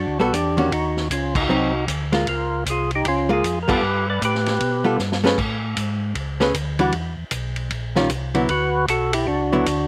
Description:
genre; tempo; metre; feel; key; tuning
soul jazz organ trio; 154 BPM; 4/4; swing 64% on 8ths; unclear; A4 = 440 Hz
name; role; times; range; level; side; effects
percussive tonewheel organ; melody; 0.0-5.0, 8.5-9.9 s; C#4 to D5; -24 LUFS; equal; slow rotary speaker, overdrive
mellow tonewheel organ; bass; 0.0-9.9 s; A#1 to B2; -28 LUFS; equal; chorus vibrato, slow rotary speaker
archtop guitar, miked and amplified; accompaniment; 0.2-9.7 s; D3 to B4; -23 LUFS; equal; none
vintage drum kit; drums; 0.3-9.8 s; crash cymbal, hi-hat, kick drum, ride cymbal, snare drum; -30 LUFS; equal; none
room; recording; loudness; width
little or no reverb; recorded outdoors, with no room sound; -21 LUFS; mono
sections
0.0-9.9 A section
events
band accent 1.3, 3.6; drum fill 5.0-5.4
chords
0.0 Gmaj9; 0.7 D#m7; 1.5 G#7; 2.3 C#6; 3.8 Gadd9; 5.4 Amaj7; 6.9 E5; 7.7 D#9; 8.5 D6

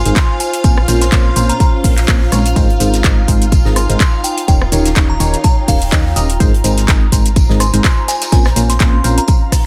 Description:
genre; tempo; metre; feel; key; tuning
piano house; 125 BPM; 4/4; swing 56% on 16ths; Ab major; A4 = 440 Hz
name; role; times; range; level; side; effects
glassy synth bell; melody; 0.0-9.4 s; F5 to C6; -24 LUFS; equal; chorus
string machine, violins; sustained chords; 0.0-9.7 s; F4 to F5; -28 LUFS; equal; ensemble chorus, sidechain pumping
solid FM bass; bass; 0.0-9.2 s; Eb1 to Eb2; -18 LUFS; equal; tube saturation, sidechain pumping
airy breathy pad; texture; 0.0-9.7 s; Db4 to Bb5; -28 LUFS; equal; chorus, sidechain pumping
barking FM electric piano; riff; 0.1-9.2 s; Ab2 to Eb5; -21 LUFS; equal; phaser, sidechain pumping
house drum kit; drums; 0.1-9.6 s; handclaps, hi-hat, rim click, shaker; -21 LUFS; equal; none
electronic kick drum; drums; 0.2-9.6 s; none; -14 LUFS; equal; none
natural country drum kit; drums; 0.2-9.7 s; hi-hat, snare drum, tambourine; -31 LUFS; equal; sidechain pumping on hats, high-pass filter on hats, high-pass filter on snare, sidechain pumping on perc, high-pass filter on perc, high-pass filter on room
room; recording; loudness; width
digital ambience; none; -13 LUFS; mono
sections
0.0-9.7 A section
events
none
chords
0.0 Abadd9; 0.6 Bbmadd9; 2.6 Abadd9; 4.2 Eb7; 6.4 Abadd9; 8.3 Bbmadd9

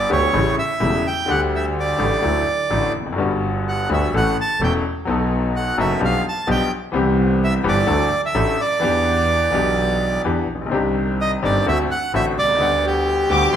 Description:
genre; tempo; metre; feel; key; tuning
tango; 127 BPM; 4/4; rubato; G major; A4 = 441 Hz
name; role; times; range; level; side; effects
bandoneon; melody; 0.0-13.6 s; G4 to A5; -20 LUFS; right 3 dB; none
bright concert grand piano; accompaniment; 0.0-13.6 s; E1 to F#5; -20 LUFS; left 4 dB; none
clear double bass; bass; 0.0-13.6 s; E1 to E2; -23 LUFS; right 2 dB; none
rich studio violin section; second line; 13.3-13.6 s; C6 to D6; -19 LUFS; left 2 dB; none
room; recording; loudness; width
moderate large studio reverb, RT60 1.4 s; minimal, uncompressed stereo recording; -17 LUFS; side -9 dB against mid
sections
0.0-13.6 A section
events
none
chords
0.3 A7; 1.3 Dsus4; 2.2 Dadd9; 3.2 Gmaj7; 4.1 A; 5.1 B7; 6.0 G7/B; 7.0 Cmaj7; 7.9 D; 8.8 Em7; 10.7 Cmadd9; 11.7 D7; 12.6 Gmaj7/D

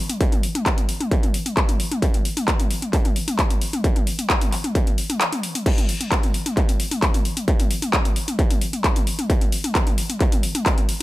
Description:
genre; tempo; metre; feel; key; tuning
techno; 132 BPM; 4/4; straight; none; none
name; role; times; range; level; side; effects
techno drum kit; drums; 0.1-11.0 s; crash cymbal, handclaps, hi-hat, toms; -23 LUFS; left 1 dB; sidechain pumping on hats, small room reverb, sidechain pumping on toms, sidechain pumping on cymbals
electronic kick drum; drums; 0.2-10.8 s; none; -20 LUFS; equal; distortion, small room reverb
room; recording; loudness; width
little or no reverb; none; -19 LUFS; side -17 dB against mid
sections
0.0-11.0 A section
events
kick drops out 5.2-5.7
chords
none

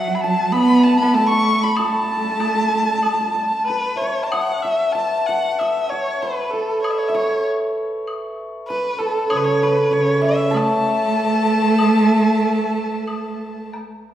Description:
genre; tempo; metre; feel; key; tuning
chinese traditional, Chinese chamber ensemble; 96 BPM; 4/4; rubato; A gong mode; A4 = 440 Hz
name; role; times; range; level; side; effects
rich erhu; melody; 0.0-13.7 s; A4 to C#6; -22 LUFS; left 2 dB; none
hammered dulcimer; second line; 0.0-13.7 s; A4 to C#6; -21 LUFS; equal; none
warm cello; second line; 0.0-3.6, 9.3-13.7 s; C#3 to B3; -19 LUFS; right 2 dB; none
woodblock; percussion; 0.5-13.9 s; none; -30 LUFS; left 3 dB; none
room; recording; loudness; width
wet recital hall reverb, RT60 1.5 s; heard from further back in the room; -16 LUFS; side -11 dB against mid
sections
0.0-4.3 A section; 4.3-14.1 B section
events
none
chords
none

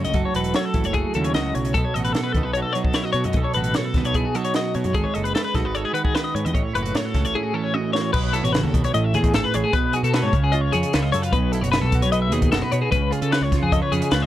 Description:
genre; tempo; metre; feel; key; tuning
math rock and midwest emo; 150 BPM; 4/4; straight; unclear; A4 = 443 Hz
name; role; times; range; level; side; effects
twelve-string electric guitar; accompaniment; 0.0-14.3 s; A2 to C#5; -25 LUFS; right 5 dB; none
twelve-string electric guitar; arpeggios; 0.0-14.3 s; G#4 to E#5; -24 LUFS; left 5 dB; tremolo, analog delay
fuzz picked electric bass; bass; 0.0-14.3 s; E1 to C#3; -25 LUFS; equal; overdrive
compact cocktail drum kit; drums; 0.0-14.2 s; crash cymbal, hi-hat, kick drum, snare drum, toms; -24 LUFS; equal; none
room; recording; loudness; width
light reverb; dark, warm production; -19 LUFS; side -13 dB against mid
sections
0.0-8.1 A section; 8.1-14.3 B section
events
drum fill 7.7-8.1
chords
0.0 F#m7; 1.7 B9; 4.9 G#m7; 8.1 B7; 8.9 Amaj7; 9.7 B5; 10.3 C#7; 11.3 G#m7; 12.9 C#7

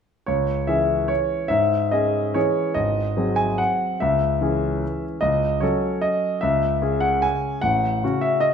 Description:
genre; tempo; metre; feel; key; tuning
classical, piano waltz; 147 BPM; 3/4; uneven beats, rubato; C# minor; A4 = 440 Hz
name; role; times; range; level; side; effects
clear concert grand piano; solo; 0.3-8.5 s; G#1 to G#5; -19 LUFS; equal; none
room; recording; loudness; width
wet recital hall reverb, RT60 1.4 s; none; -19 LUFS; side -7 dB against mid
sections
0.3-8.5 A section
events
none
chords
0.3 C#m; 2.8 G#7; 4.0 C#m; 5.2 F#m/C#; 6.4 C#m; 7.6 F#m/A

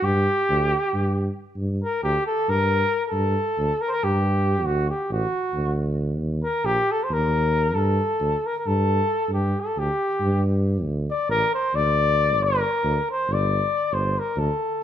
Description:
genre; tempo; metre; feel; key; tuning
balkan folk; 272 BPM (eighths); 7/8; straight; G harmonic minor; A4 = 440 Hz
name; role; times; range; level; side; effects
mellow cornet; melody; 0.0-14.8 s; F#4 to D5; -22 LUFS; left 1 dB; none
mellow tuba; bass; 0.0-14.5 s; G1 to G2; -24 LUFS; equal; none
room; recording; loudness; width
light reverb; close, detailed microphones; -20 LUFS; side -10 dB against mid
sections
0.0-1.6 A section; 1.6-14.8 B section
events
cornet solo 1.6-14.8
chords
0.0 G5; 4.7 D; 6.2 Eb5; 7.8 G5; 10.8 D5; 12.4 G5

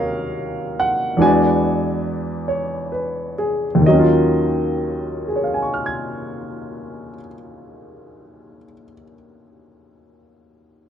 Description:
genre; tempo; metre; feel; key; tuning
jazz ballad; 42-52 BPM; 4/4; swing 66% on 8ths; Eb minor; A4 = 442 Hz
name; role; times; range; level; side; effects
warm baby grand piano; solo; 0.0-10.9 s; Eb2 to Ab6; -18 LUFS; equal; none
room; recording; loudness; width
studio ambience; dry, close 1970s-style studio recording; -17 LUFS; side -9 dB against mid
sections
0.0-3.8 A section; 3.8-9.5 B section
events
slowing down 0.0-3.8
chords
0.0 Ebm7; 1.2 E7; 3.8 Ebm7

